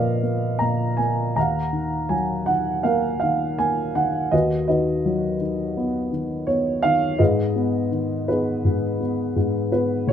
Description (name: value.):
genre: classical, lyrical solo piano.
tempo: 83 BPM.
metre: 4/4.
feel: rubato.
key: unclear.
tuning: A4 = 440 Hz.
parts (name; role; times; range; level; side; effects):
dark upright piano; solo; 0.0-10.1 s; Eb2 to Bb5; -20 LUFS; equal; none.
room: light reverb.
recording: close, detailed microphones.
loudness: -20 LUFS.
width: side -9 dB against mid.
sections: 0.0-10.1 A section.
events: none.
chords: 0.0 Bb; 1.4 Ebmadd9; 4.3 B/D#; 7.2 Abm.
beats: 0.61 | 1.36 2.10 2.85 3.59 | 4.33 5.05 5.76 6.48 | 7.20 7.92 8.64 9.37 | 10.09.